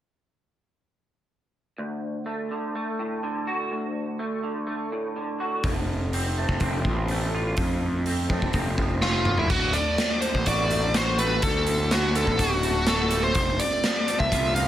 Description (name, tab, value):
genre	quiet-loud alternative rock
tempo	124 BPM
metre	4/4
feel	straight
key	unclear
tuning	A4 = 444 Hz
part	electric guitar through a small old amp	arpeggios	1.8-14.7 s	D2 to F#4	-29 LUFS	right 1 dB	ensemble chorus
part	fuzz picked electric bass	bass	5.6-14.7 s	D1 to F2	-27 LUFS	equal	overdrive
part	raw garage drum kit	drums	5.6-14.7 s	crash cymbal, hi-hat, kick drum, snare drum, toms	-26 LUFS	equal	none
part	bluesy overdriven lead guitar	melody	9.0-14.7 s	E4 to F5	-25 LUFS	equal	distortion
room	light reverb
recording	none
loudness	-22 LUFS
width	side -12 dB against mid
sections	1.8-9.5 A section; 9.5-14.7 B section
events	drum fill 9.0-9.5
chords	1.8 D; 5.6 F; 9.5 D; 13.4 F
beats	| 1.77 2.25 2.74 3.22 | 3.71 4.19 4.67 5.16 | 5.64 6.13 6.61 7.10 | 7.58 8.06 8.55 9.03 | 9.51 10.00 10.48 10.96 | 11.44 11.92 12.40 12.88 | 13.36 13.84 14.32